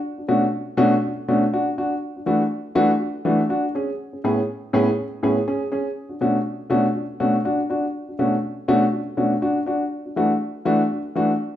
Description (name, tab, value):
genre	disco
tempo	122 BPM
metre	4/4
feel	swing 56% on 16ths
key	B dorian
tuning	A4 = 439 Hz
part	dark grand piano	solo	0.2-11.3 s	A2 to G#4	-19 LUFS	equal	none
room	wet large studio reverb, RT60 1.0 s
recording	band playing live in one room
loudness	-19 LUFS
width	side -11 dB against mid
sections	0.0-6.0 A section; 6.0-11.6 B section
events	none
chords	0.0 Bm9; 2.0 E7sus4; 3.7 Amaj7; 6.0 Bm9; 9.9 E7sus4